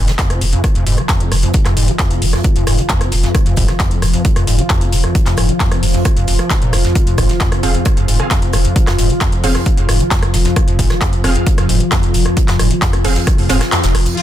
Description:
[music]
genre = driving peak-time techno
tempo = 133 BPM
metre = 4/4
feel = straight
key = F minor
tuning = A4 = 440 Hz
[part]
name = overdriven acid bass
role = riff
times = 0.0-14.2 s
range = Eb2 to F3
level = -19 LUFS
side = equal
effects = distortion, ensemble chorus, sidechain pumping, digital delay
[part]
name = saturated sub bass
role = bass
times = 0.0-14.1 s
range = F1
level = -18 LUFS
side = equal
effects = overdrive, sidechain pumping, low-pass filter
[part]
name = deep dark ambient pad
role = drone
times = 0.5-14.2 s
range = F3 to F4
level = -21 LUFS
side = left 1 dB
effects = chorus, built-in reverb, sidechain pumping
[part]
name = soft brush drum kit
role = drums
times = 0.1-14.2 s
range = hi-hat, snare drum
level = -28 LUFS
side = right 3 dB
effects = high-pass filter on hats, low-pass filter on hats, soft clipping on snare, high-pass filter on snare, low-pass filter on snare, high-pass filter on room, low-pass filter on room
[part]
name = techno drum kit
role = drums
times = 0.1-14.2 s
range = crash cymbal, handclaps, hi-hat, rim click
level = -20 LUFS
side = left 1 dB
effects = soft clipping on snare
[part]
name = electronic kick drum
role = drums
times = 0.2-13.4 s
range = none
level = -16 LUFS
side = equal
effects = none
[part]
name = rave stab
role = stabs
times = 7.6-13.6 s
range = C4 to F5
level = -21 LUFS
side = right 2 dB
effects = chorus, built-in reverb, sidechain pumping, digital delay
[part]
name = downlifter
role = sound effects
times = 14.2 s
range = none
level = barely audible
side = none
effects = none
[part]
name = bright studio string section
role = texture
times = 14.2 s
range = F4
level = -22 LUFS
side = right 1 dB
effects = sidechain pumping
[sound]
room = light reverb, digital ambience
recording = dense, heavily limited modern master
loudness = -12 LUFS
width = side -12 dB against mid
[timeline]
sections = 0.0-14.2 A section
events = kick drops out 13.7-14.2; band accent 13.7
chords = 0.0 Fm

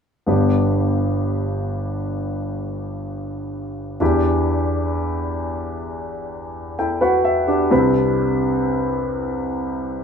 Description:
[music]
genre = pop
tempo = 65 BPM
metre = 4/4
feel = straight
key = G major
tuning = A4 = 442 Hz
[part]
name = warm grand piano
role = accompaniment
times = 0.3-10.0 s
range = G1 to G5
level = -19 LUFS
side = equal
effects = none
[sound]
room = moderate studio reverb, RT60 0.7 s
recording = band playing live in one room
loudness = -18 LUFS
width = side -6 dB against mid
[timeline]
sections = 0.3-10.0 A section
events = grand piano fill 6.3-7.7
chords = 0.3 G; 4.0 Em7; 7.7 Cmaj7

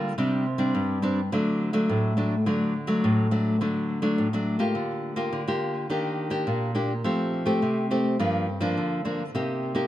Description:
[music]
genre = samba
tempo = 105 BPM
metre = 4/4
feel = straight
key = unclear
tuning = A4 = 438 Hz
[part]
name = nylon-string guitar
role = solo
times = 0.0-9.9 s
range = G2 to G4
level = -23 LUFS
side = equal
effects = tape echo
[sound]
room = moderate large studio reverb, RT60 1.2 s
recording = close, detailed microphones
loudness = -23 LUFS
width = side -13 dB against mid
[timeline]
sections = 0.0-3.6 A section; 3.6-9.9 B section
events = none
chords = 0.2 Csus2; 1.3 D; 4.8 Gm7/D; 5.9 Ebmaj7; 7.0 Fadd9; 8.2 Gm7; 9.3 Cm7

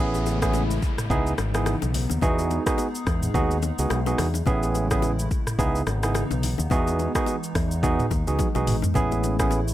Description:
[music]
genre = afrobeats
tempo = 107 BPM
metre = 4/4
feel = swing 58% on 16ths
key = unclear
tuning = A4 = 440 Hz
[part]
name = barky tine electric piano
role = accompaniment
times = 0.0-9.6 s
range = B3 to G#4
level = -26 LUFS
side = right 3 dB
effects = overdrive
[part]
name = hollow soft pad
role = sustained chords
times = 0.0-9.7 s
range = C#3 to G#4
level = -32 LUFS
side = left 2 dB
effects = chorus
[part]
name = fingered electric bass with an envelope filter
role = bass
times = 0.0-9.7 s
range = G#1 to E2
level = -25 LUFS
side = equal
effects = none
[part]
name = downlifter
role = sound effects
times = 0.0-4.5 s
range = none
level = -40 LUFS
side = left 1 dB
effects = none
[part]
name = afro-pop drum kit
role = drums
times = 0.1-9.7 s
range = hi-hat, kick drum, rim click, shaker, toms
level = -27 LUFS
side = equal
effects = none
[part]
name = bongos and congas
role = percussion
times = 0.2-9.7 s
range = none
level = -34 LUFS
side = left 10 dB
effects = none
[sound]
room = little or no reverb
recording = none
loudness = -21 LUFS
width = side -13 dB against mid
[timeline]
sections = 0.0-9.7 A section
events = drum fill 8.4-9.0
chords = 0.0 Amaj7; 1.1 C#m9; 2.2 Emaj7; 4.5 Amaj7; 5.6 C#m9; 6.7 Emaj7; 9.0 Amaj7

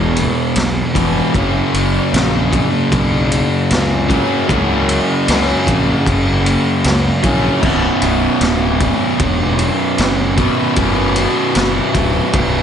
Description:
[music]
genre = stoner and doom metal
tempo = 76 BPM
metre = 4/4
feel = straight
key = unclear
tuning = A4 = 439 Hz
[part]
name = fuzz guitar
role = riff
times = 0.0-12.6 s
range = B1 to F#3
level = -15 LUFS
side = equal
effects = distortion
[part]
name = fuzz fingered electric bass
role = bass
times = 0.0-12.6 s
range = B0 to C#2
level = -19 LUFS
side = equal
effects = overdrive
[part]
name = raw garage drum kit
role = drums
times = 0.2-12.5 s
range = crash cymbal, kick drum, ride cymbal, snare drum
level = -19 LUFS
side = equal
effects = none
[sound]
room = studio reverb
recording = nothing above 10.7 kHz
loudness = -12 LUFS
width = side -8 dB against mid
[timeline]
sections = 0.0-12.6 A section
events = none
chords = 0.0 E5; 1.3 F#; 7.6 Bm

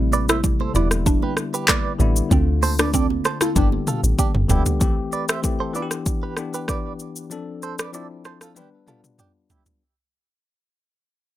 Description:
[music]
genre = afrobeats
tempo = 96 BPM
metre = 4/4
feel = straight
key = A minor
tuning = A4 = 439 Hz
[part]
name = mallet-like synth pluck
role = melody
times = 0.0-4.5 s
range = C4 to E4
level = -25 LUFS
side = right 1 dB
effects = chorus, phaser, digital delay
[part]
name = bell-like tine electric piano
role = accompaniment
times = 0.0-9.8 s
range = C3 to B4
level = -28 LUFS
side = left 5 dB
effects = none
[part]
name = deep log drum bass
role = bass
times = 0.0-4.6 s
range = E1 to D2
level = -21 LUFS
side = equal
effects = none
[part]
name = direct-recorded clean electric guitar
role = riff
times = 0.1-9.6 s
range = D4 to E5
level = -28 LUFS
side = right 7 dB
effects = tremolo, digital delay
[part]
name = deep house drum kit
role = drums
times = 0.1-9.8 s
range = handclaps, hi-hat, kick drum, rim click, shaker, toms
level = -21 LUFS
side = equal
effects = none
[part]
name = congas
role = percussion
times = 0.1-4.7 s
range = none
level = -32 LUFS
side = right 10 dB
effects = none
[sound]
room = little or no reverb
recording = none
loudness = -18 LUFS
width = side -14 dB against mid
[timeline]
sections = 0.0-4.8 A section; 4.8-9.8 B section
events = drum fill 3.6-4.8, 8.6-9.8; fade-out 4.8-9.8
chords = 0.0 Am7; 0.7 Em7; 2.3 Dm7; 3.6 G; 4.8 Am7; 5.7 Em7; 7.3 Dm7; 8.6 G

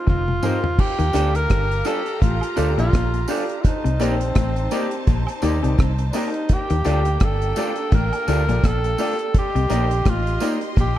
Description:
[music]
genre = lovers rock reggae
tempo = 84 BPM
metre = 4/4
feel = swing 57% on 16ths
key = unclear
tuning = A4 = 440 Hz
[part]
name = breathy tenor saxophone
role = melody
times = 0.0-11.0 s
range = C4 to Bb4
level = -25 LUFS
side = equal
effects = tape echo
[part]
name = electric guitar through a small old amp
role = riff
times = 0.1-10.9 s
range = F2 to Eb3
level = -31 LUFS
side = left 7 dB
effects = tape echo
[part]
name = vintage muted fingered electric bass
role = bass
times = 0.1-10.9 s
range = F1 to Eb2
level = -21 LUFS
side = equal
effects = none
[part]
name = deep reggae drum kit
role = drums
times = 0.1-11.0 s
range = crash cymbal, hi-hat, kick drum, rim click, toms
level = -20 LUFS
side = equal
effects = none
[part]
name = bright grand piano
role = accompaniment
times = 0.4-10.6 s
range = Eb4 to D5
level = -30 LUFS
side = left 5 dB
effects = none
[part]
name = electric guitar through a small old amp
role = stabs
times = 0.4-10.7 s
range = A3 to Bb4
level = -29 LUFS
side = right 4 dB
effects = spring reverb, tape echo
[part]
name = tambourine and woodblock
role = percussion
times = 0.4-11.0 s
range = none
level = -39 LUFS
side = right 5 dB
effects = tape echo
[part]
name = warm studio string section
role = second line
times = 0.8-11.0 s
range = Bb3 to C6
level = -33 LUFS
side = right 1 dB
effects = tape echo
[sound]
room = light reverb, small room reverb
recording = dark, warm production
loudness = -18 LUFS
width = side -13 dB against mid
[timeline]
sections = 0.8-11.0 A section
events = drum fill 0.1-0.8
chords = 0.0 F7sus4; 0.8 Ebmaj9#11 (rootless); 3.6 Cm7; 6.5 Ebmaj9#11 (rootless); 9.3 Cm7

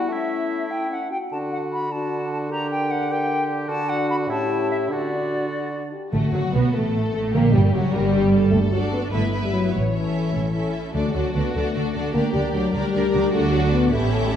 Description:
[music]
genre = classical, dramatic, fast romantic movement for symphony orchestra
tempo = 100 BPM (dotted quarters)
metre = 6/8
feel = straight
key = D major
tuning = A4 = 439 Hz
[part]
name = clear oboe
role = second line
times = 0.0-5.9 s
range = E4 to G4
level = -32 LUFS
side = right 1 dB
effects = none
[part]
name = silver concert flute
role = second line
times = 0.0-5.9 s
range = D5 to B5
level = -27 LUFS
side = left 1 dB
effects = none
[part]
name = warm bassoon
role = accompaniment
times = 0.0-5.9 s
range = A2 to A3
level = -28 LUFS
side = right 2 dB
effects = none
[part]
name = mellow French horn section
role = sustained chords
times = 0.0-14.4 s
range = E3 to Bb4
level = -24 LUFS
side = left 3 dB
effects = none
[part]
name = rich symphonic violin section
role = melody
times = 6.1-14.4 s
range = E4 to C#5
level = -32 LUFS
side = left 2 dB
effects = none
[part]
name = warm symphonic violin section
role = second line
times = 6.1-14.4 s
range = G3 to E5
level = -30 LUFS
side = left 2 dB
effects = none
[part]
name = warm symphonic viola section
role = accompaniment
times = 6.1-14.4 s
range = F#3 to G4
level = -29 LUFS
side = right 2 dB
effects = none
[part]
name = dark symphonic double bass section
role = bass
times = 6.1-14.4 s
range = F#1 to D2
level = -25 LUFS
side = right 3 dB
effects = none
[part]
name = rich symphonic cello section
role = bass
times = 6.1-14.4 s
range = D2 to D3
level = -25 LUFS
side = right 2 dB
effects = none
[part]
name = timpani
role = percussion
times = 6.1-7.9, 10.9-11.5 s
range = D3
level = -27 LUFS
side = equal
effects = none
[sound]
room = wet scoring stage reverb, RT60 1.8 s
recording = dark, warm production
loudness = -20 LUFS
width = side -9 dB against mid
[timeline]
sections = 0.0-6.1 A section; 6.1-14.4 A section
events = none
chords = 0.1 A; 1.3 D; 2.5 Gm/D; 3.7 D; 4.3 A7; 4.9 D; 6.1 F#madd11; 7.3 Gm; 8.5 D; 9.1 Em/G; 9.7 A; 10.9 D; 12.1 Gm/D; 13.3 D

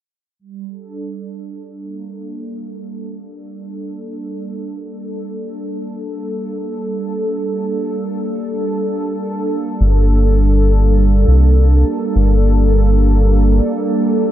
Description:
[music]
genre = ambient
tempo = free time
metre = none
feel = none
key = G minor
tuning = A4 = 440 Hz
[part]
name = warm analog pad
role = sustained chords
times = 0.4-14.3 s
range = G3 to A4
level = -20 LUFS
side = right 1 dB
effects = lush chorus
[part]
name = round analog bass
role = bass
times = 9.8-13.6 s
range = G1 to C2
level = -11 LUFS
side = equal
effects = none
[sound]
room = light reverb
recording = none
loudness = -13 LUFS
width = side -12 dB against mid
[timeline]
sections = 0.4-14.3 A section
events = filter sweep on analog synth pad 0.4-14.3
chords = 0.4 Gm

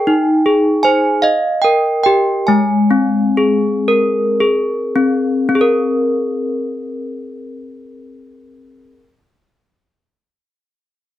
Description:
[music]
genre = children's music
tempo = 33-53 BPM (dotted quarters)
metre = 6/8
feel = rubato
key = Ab major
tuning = A4 = 443 Hz
[part]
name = desk bells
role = solo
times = 0.0-9.0 s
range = Ab3 to Ab5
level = -13 LUFS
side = left 1 dB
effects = none
[sound]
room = light reverb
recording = dry, close 1970s-style studio recording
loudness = -12 LUFS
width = side -12 dB against mid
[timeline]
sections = 0.0-5.5 A section; 5.5-9.1 B section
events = slowing down 0.1-5.5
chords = 0.1 Ab/Eb; 1.2 Eb; 2.5 Abadd9

